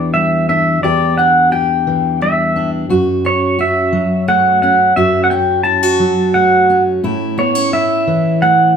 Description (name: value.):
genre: folk.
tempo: 87 BPM.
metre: 3/4.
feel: straight.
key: unclear.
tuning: A4 = 440 Hz.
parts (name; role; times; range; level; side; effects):
pedal steel guitar; melody; 0.0-8.7 s; C#5 to A5; -13 LUFS; right 1 dB; none.
fingerpicked steel-string acoustic guitar; accompaniment; 0.0-8.8 s; E2 to G4; -15 LUFS; equal; none.
room: wet studio reverb, RT60 0.7 s.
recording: heard from further back in the room.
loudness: -11 LUFS.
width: side -7 dB against mid.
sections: 0.0-8.8 A section.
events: none.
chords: 0.0 Em7; 2.9 F#m; 7.0 A.